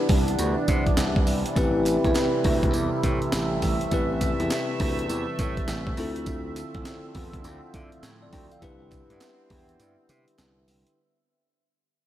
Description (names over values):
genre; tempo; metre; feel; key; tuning
R&B, new jack swing; 102 BPM; 4/4; swing 63% on 16ths; unclear; A4 = 440 Hz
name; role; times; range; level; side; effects
bell-like tine electric piano; accompaniment; 0.0-11.0 s; C4 to G5; -28 LUFS; left 3 dB; none
sweeping resonant pad; sustained chords; 0.0-11.0 s; C3 to E5; -30 LUFS; right 3 dB; chorus, phaser
slap bass; bass; 0.1-10.8 s; A1 to D3; -29 LUFS; equal; none
breakbeat sampler-style drum kit; drums; 0.1-11.0 s; hi-hat, kick drum, snare drum, tambourine; -27 LUFS; equal; none
group handclap; percussion; 1.0-10.6 s; none; -45 LUFS; right 5 dB; none
room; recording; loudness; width
moderate lush hall reverb, RT60 2.7 s; big arena sound; -22 LUFS; side -12 dB against mid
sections
0.0-11.0 A section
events
fade-out 0.0-11.0; break 9.8-11.0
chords
0.0 Cmaj9; 1.6 Am7; 6.0 Dm9; 8.6 Cmaj9